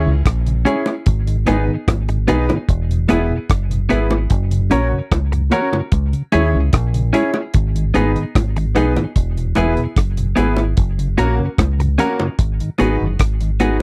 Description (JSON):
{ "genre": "roots reggae", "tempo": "74 BPM", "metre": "4/4", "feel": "straight", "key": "G# minor", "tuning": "A4 = 440 Hz", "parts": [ { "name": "clear concert grand piano", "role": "stabs", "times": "0.0-13.8 s", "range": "A#3 to C#5", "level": "-23 LUFS", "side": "equal", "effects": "none" }, { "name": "deep dub fingered electric bass", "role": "bass", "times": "0.0-13.8 s", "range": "E1 to D#2", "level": "-20 LUFS", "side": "equal", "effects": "none" }, { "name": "mellow tonewheel organ", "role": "accompaniment", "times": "0.1-13.7 s", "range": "E2 to F#4", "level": "-24 LUFS", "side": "equal", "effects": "slow rotary speaker" }, { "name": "deep reggae drum kit", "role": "drums", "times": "0.3-13.8 s", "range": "hi-hat, kick drum, rim click", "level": "-20 LUFS", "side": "equal", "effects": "none" }, { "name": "clean electric guitar", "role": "accompaniment", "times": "0.7-13.8 s", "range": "B3 to A#4", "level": "-24 LUFS", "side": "equal", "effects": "tape echo" }, { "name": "bongos", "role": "percussion", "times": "0.9-13.0 s", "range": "none", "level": "-26 LUFS", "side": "equal", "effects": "none" } ], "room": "light reverb", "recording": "dry, close 1970s-style studio recording", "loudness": "-17 LUFS", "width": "mono", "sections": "0.0-12.4 A section; 12.4-13.8 B section", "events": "none", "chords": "0.0 C#m; 1.1 G#m; 2.7 E; 4.3 F#; 5.9 C#m; 7.5 G#m; 9.2 E; 10.8 F#; 12.4 G#m7" }